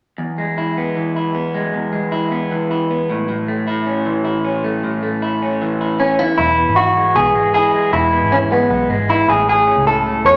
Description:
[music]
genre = jangly indie pop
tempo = 155 BPM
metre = 4/4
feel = straight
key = unclear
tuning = A4 = 437 Hz
[part]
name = electric guitar through a small old amp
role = arpeggios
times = 0.2-10.4 s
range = E2 to E4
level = -21 LUFS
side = equal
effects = spring reverb
[part]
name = electric guitar through a small old amp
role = melody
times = 6.0-10.4 s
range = B3 to C#5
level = -15 LUFS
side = equal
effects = none
[part]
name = vintage muted picked electric bass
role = bass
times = 6.4-10.4 s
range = E1 to E2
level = -26 LUFS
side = equal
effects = none
[sound]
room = wet large studio reverb, RT60 1.2 s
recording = none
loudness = -17 LUFS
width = mono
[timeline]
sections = 0.2-6.4 A section; 6.4-10.4 B section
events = none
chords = 0.2 E; 3.1 A; 6.2 N.C.; 6.4 E; 9.3 A

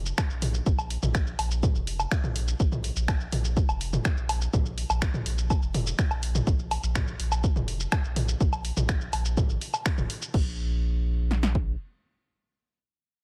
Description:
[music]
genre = melodic techno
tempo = 124 BPM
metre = 4/4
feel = straight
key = unclear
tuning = A4 = 442 Hz
[part]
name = round analog bass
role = bass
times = 0.0-11.8 s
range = F1 to Bb1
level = -32 LUFS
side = equal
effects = sidechain pumping
[part]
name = punchy analog drum machine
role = drums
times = 0.1-10.4 s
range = crash cymbal, finger snaps, hi-hat, shaker, toms, woodblock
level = -33 LUFS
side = equal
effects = none
[part]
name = deep house drum kit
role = drums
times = 0.2-11.7 s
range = kick drum, snare drum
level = -29 LUFS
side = equal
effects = overdrive
[sound]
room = little or no reverb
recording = none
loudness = -27 LUFS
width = mono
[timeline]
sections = 0.0-10.3 A section; 10.3-13.2 B section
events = drop 0.0-10.3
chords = none

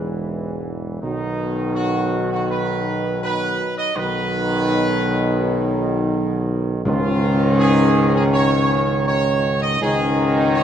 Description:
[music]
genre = classical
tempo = 82 BPM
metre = 4/4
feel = straight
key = unclear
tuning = A4 = 438 Hz
[part]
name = dark trumpet section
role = melody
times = 0.0-10.6 s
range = Eb4 to Eb5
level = -23 LUFS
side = right 2 dB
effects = none
[part]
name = mellow French horn section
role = sustained chords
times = 0.0-10.6 s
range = Gb3 to Ab4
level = -25 LUFS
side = left 5 dB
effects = none
[part]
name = warm trombone section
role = sustained chords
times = 0.0-10.6 s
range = Ab2 to E3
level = -24 LUFS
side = right 1 dB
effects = none
[part]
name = warm tuba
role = bass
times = 0.0-10.6 s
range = E1 to Db2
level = -21 LUFS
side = right 2 dB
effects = none
[part]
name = timpani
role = percussion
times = 6.9-7.9 s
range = Db3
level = -28 LUFS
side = left 1 dB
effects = none
[sound]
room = moderate recital hall reverb, RT60 1.6 s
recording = none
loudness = -17 LUFS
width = side -9 dB against mid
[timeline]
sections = 0.0-10.6 A section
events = none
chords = 0.0 E; 1.0 Cb; 6.9 Dbsus2

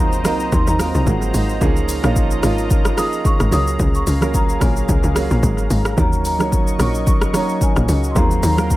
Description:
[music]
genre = amapiano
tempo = 110 BPM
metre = 4/4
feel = swing 55% on 16ths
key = Eb dorian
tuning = A4 = 442 Hz
[part]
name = marimba with medium mallets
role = melody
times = 0.0-8.8 s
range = Gb5 to Eb6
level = -25 LUFS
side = left 1 dB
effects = dub echo
[part]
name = warm baby grand piano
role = accompaniment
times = 0.0-8.8 s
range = F3 to Db5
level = -22 LUFS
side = right 4 dB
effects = dub echo
[part]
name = warm analog pad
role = sustained chords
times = 0.0-8.8 s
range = Gb3 to Db6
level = -27 LUFS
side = left 2 dB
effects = chorus
[part]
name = tight log drum bass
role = bass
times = 0.0-8.8 s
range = Ab1 to Eb2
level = -19 LUFS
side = equal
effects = none
[part]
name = deep house drum kit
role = drums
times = 0.1-8.8 s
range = hi-hat, kick drum, rim click, shaker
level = -19 LUFS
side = equal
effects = none
[sound]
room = digital ambience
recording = echo-heavy mix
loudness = -15 LUFS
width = side -17 dB against mid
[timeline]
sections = 0.0-8.8 A section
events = none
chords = 0.0 Ab13; 1.6 Db69; 3.5 Gbmaj9; 6.0 Ebm7; 8.2 Ab13/Eb

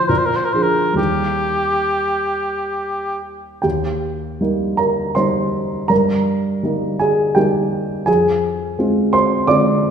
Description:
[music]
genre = classical, romantic duo for oboe and grand piano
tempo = 66-86 BPM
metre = 3/4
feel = rubato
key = Eb major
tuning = A4 = 442 Hz
[part]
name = warm oboe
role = melody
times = 0.0-3.2 s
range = G4 to C5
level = -18 LUFS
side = equal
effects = none
[part]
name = dark baby grand piano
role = accompaniment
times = 0.0-9.9 s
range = Eb2 to D6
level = -16 LUFS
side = right 1 dB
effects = none
[sound]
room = wet scoring stage reverb, RT60 1.6 s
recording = minimal, uncompressed stereo recording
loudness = -16 LUFS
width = side -7 dB against mid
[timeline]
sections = 0.0-3.6 A section; 3.6-9.9 B section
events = none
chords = 0.1 Bb7; 1.0 Eb; 5.9 Eb/G; 8.1 Fm

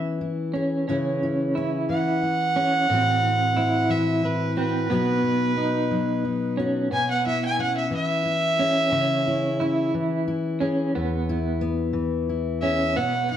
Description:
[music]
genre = acoustic folk duo or small band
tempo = 60 BPM (dotted quarters)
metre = 6/8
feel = straight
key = E major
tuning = A4 = 438 Hz
[part]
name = fingerpicked steel-string acoustic guitar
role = accompaniment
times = 0.0-13.4 s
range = E2 to G#4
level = -25 LUFS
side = left 3 dB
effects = none
[part]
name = electric guitar through a small old amp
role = arpeggios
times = 0.5-13.4 s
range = B3 to E4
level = -26 LUFS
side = right 2 dB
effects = tremolo
[part]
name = warm fiddle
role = melody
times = 1.9-13.4 s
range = B4 to G#5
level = -24 LUFS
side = right 2 dB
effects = none
[sound]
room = wet large studio reverb, RT60 1.3 s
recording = dark, warm production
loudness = -21 LUFS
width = side -10 dB against mid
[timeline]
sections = 0.0-13.0 A section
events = fiddle solo 0.0-13.0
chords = 0.0 E6; 0.9 C#m; 2.9 Am6; 4.9 B; 6.9 E6/B; 8.9 C#m; 10.9 E

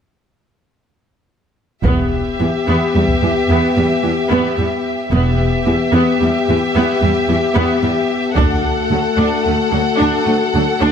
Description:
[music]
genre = cinematic, epic orchestral film score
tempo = 74 BPM (dotted quarters)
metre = 12/8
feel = straight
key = E minor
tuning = A4 = 445 Hz
[part]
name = rich symphonic violin section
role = melody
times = 1.8-10.9 s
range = E5 to F#5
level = -22 LUFS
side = equal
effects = none
[part]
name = warm symphonic violin section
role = second line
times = 1.8-10.9 s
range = G4 to A4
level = -22 LUFS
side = left 2 dB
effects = none
[part]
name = rich symphonic viola section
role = accompaniment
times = 1.8-10.9 s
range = E3 to D4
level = -20 LUFS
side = right 1 dB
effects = none
[part]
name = dark French horn section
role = sustained chords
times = 1.8-10.9 s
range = A3 to G4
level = -19 LUFS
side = left 6 dB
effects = none
[part]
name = rich symphonic cello section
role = bass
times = 1.8-10.9 s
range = D2 to E2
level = -19 LUFS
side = right 2 dB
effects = none
[part]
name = solo taiko drums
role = drums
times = 1.8-3.3, 8.4-9.4 s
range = none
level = -20 LUFS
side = equal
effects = none
[part]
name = rich symphonic double bass section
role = bass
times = 1.9-8.6 s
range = E1 to D2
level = -20 LUFS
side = right 2 dB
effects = none
[sound]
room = moderate scoring stage reverb, RT60 1.9 s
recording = none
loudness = -13 LUFS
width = side -8 dB against mid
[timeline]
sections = 1.8-10.9 A section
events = none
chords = 1.8 Em; 8.4 D

